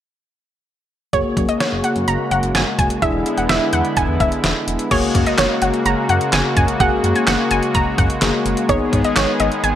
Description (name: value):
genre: synth-pop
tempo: 127 BPM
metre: 4/4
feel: straight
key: F# major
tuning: A4 = 439 Hz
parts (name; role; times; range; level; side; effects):
- warbly dusty pluck; second line; 1.1-9.8 s; C#5 to A#5; -20 LUFS; right 1 dB; chorus, digital delay
- bell-like tine electric piano; accompaniment; 1.1-9.8 s; A#3 to G#4; -22 LUFS; left 5 dB; lush chorus, low-pass filter
- brassy analog pad; sustained chords; 1.1-9.8 s; C#3 to G#4; -22 LUFS; right 1 dB; chorus, low-pass filter
- smooth synth bass; bass; 1.1-9.7 s; E1 to G#2; -23 LUFS; equal; none
- detuned 8-bit digital drum machine; drums; 1.1-9.7 s; crash cymbal, handclaps, hi-hat, kick drum, snare drum; -20 LUFS; equal; none
room: moderate lush hall reverb, RT60 1.6 s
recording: none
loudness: -15 LUFS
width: side -10 dB against mid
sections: 1.1-4.9 A section; 4.9-9.8 B section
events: filter sweep 1.1-4.9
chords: 1.1 F#add9; 3.0 E7; 4.9 F#add9; 8.7 G#m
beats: | 1.13 1.60 2.08 2.55 | 3.02 3.50 3.97 4.44 | 4.91 5.38 5.86 6.33 | 6.80 7.27 7.75 8.22 | 8.69 9.16 9.64